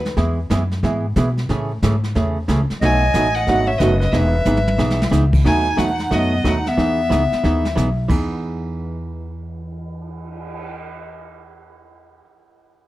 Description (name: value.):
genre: country, western swing.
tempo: 182 BPM.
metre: 4/4.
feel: swing 64% on 8ths.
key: E major.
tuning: A4 = 440 Hz.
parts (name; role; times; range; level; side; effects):
growling clarinet; second line; 0.0, 2.8-7.8 s; B3 to D#5; -24 LUFS; right 1 dB; none.
upright bass; bass; 0.0-12.2 s; E1 to B2; -21 LUFS; equal; none.
jazz brush drum kit; drums; 0.1-10.7 s; brushed snare drum, crash cymbal, cymbal swell, hi-hat, kick drum, snare drum, toms; -25 LUFS; equal; none.
archtop guitar, miked and amplified; accompaniment; 0.2-12.2 s; B2 to G#4; -22 LUFS; right 2 dB; none.
clear fiddle; melody; 2.8-7.8 s; D#5 to G#5; -22 LUFS; left 2 dB; plate reverb.
room: light reverb.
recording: none.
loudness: -16 LUFS.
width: side -16 dB against mid.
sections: 0.0-5.5 A section; 5.5-8.1 B section; 8.1-10.7 C section.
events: drum fill 4.5-5.1.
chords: 0.2 E; 1.5 Amaj7; 2.8 B7; 4.1 Emaj7; 5.5 B7; 6.8 Emaj7.